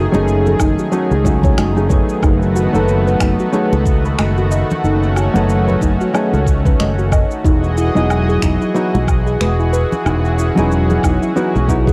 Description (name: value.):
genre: sunset chillout.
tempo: 92 BPM.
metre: 4/4.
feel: swing 57% on 16ths.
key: F# dorian.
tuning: A4 = 440 Hz.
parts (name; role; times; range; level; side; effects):
lush unison pad; sustained chords; 0.0-11.9 s; D#3 to D#5; -23 LUFS; equal; chorus, cassette tape.
soft round pluck; arpeggios; 0.0-11.9 s; D#4 to F#5; -25 LUFS; equal; chorus, cassette tape, analog delay.
fretless electric bass; bass; 0.0-11.9 s; E1 to C#2; -19 LUFS; equal; none.
hollow-body jazz guitar; accompaniment; 0.1-11.9 s; F#3 to A4; -20 LUFS; equal; cassette tape, analog delay.
electronic cabasa, woodblock and finger snaps; drums; 0.1-11.9 s; none; -28 LUFS; equal; cassette tape.
congas; percussion; 0.1-11.9 s; none; -25 LUFS; equal; none.
electronic kick drum; drums; 0.6-11.9 s; none; -18 LUFS; equal; cassette tape.
room: light reverb.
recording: home recording on cassette.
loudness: -15 LUFS.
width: mono.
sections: 0.0-11.9 A section.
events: none.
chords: 0.0 F#m69; 7.5 Emaj9.